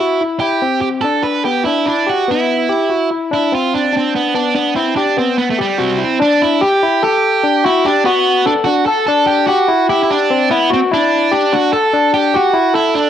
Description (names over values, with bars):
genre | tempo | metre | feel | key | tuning
rock | 292 BPM (eighths) | 7/8 | straight | G major | A4 = 440 Hz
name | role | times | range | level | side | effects
overdriven electric guitar | melody | 0.0-13.1 s | G3 to B4 | -14 LUFS | right 6 dB | spring reverb, cassette tape
barky tine electric piano | arpeggios | 0.0-13.1 s | B3 to A4 | -15 LUFS | left 6 dB | cassette tape
room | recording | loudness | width
light reverb | home recording on cassette | -12 LUFS | side -10 dB against mid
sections
0.0-6.2 A section; 6.2-13.1 B section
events
none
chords
0.4 G6; 3.3 D7(no3); 4.8 Cmaj7; 6.2 Gmaj7sus2; 9.1 Cadd9 (rootless); 11.9 Gmaj7sus2